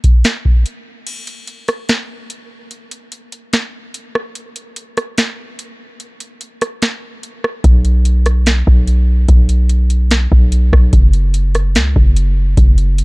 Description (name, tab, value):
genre	hip hop, atmospheric cloud-rap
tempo	146 BPM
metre	4/4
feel	half-time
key	unclear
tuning	A4 = 438 Hz
part	booming analog drum machine	drums	0.0-13.0 s	crash cymbal, hi-hat, kick drum, rim click, snare drum	-13 LUFS	equal	none
part	warm 808-style bass	bass	7.6-13.0 s	Gb1 to Db2	-12 LUFS	equal	none
room	little or no reverb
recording	dark, warm production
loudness	-11 LUFS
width	side -26 dB against mid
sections	0.0-1.1 A section; 1.1-13.0 B section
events	break 1.1-7.6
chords	none